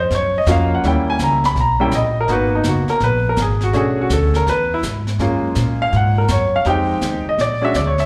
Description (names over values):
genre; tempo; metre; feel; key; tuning
jazz piano trio; 165 BPM; 4/4; swing 66% on 8ths; Eb minor; A4 = 440 Hz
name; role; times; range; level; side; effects
clear baby grand piano; melody; 0.0-8.1 s; G3 to Cb6; -19 LUFS; equal; slapback echo
upright bass; bass; 0.0-8.1 s; Gb1 to Bb2; -21 LUFS; equal; none
jazz brush drum kit; drums; 0.1-8.1 s; brushed snare drum, hi-hat, kick drum, snare drum; -31 LUFS; equal; slapback echo
room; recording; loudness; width
light reverb, studio reverb; live gig heard through the venue's PA, club reverb; -17 LUFS; mono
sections
0.0-8.1 A section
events
none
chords
0.0 Ebm9 (rootless); 0.8 Eb7b9; 2.3 Abm9; 3.7 Bm7; 4.5 E; 5.2 Gbmaj9; 6.7 Fm7; 7.4 Bb(#9)